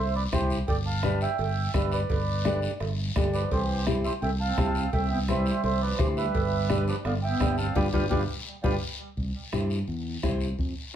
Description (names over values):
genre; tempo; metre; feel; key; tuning
latin, cumbia; 170 BPM; 4/4; straight; C major; A4 = 444 Hz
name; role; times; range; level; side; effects
mellow accordion; melody; 0.0-8.8 s; G4 to A5; -31 LUFS; right 3 dB; none
fingered electric bass; bass; 0.0-10.7 s; G1 to G2; -29 LUFS; equal; none
nylon-string guitar; accompaniment; 0.3-10.5 s; D4 to C5; -30 LUFS; left 3 dB; none
bombo; percussion; 0.3-10.8 s; none; -32 LUFS; equal; none
congas; percussion; 0.3-10.8 s; none; -35 LUFS; left 1 dB; none
guiro; percussion; 0.3-10.9 s; none; -40 LUFS; left 5 dB; none
cowbell and timbales; percussion; 0.7-8.7 s; none; -36 LUFS; right 5 dB; none
mellow duduk; second line; 3.3-8.7 s; E3 to C4; -34 LUFS; right 2 dB; tape echo
room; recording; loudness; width
wet studio ambience, RT60 0.5 s; heard from further back in the room; -24 LUFS; side -10 dB against mid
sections
0.0-9.2 A section; 9.2-11.0 B section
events
drum fill 7.8-9.2; band accent 7.8-9.2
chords
0.0 C; 0.7 G; 3.5 C; 6.3 G7; 9.2 C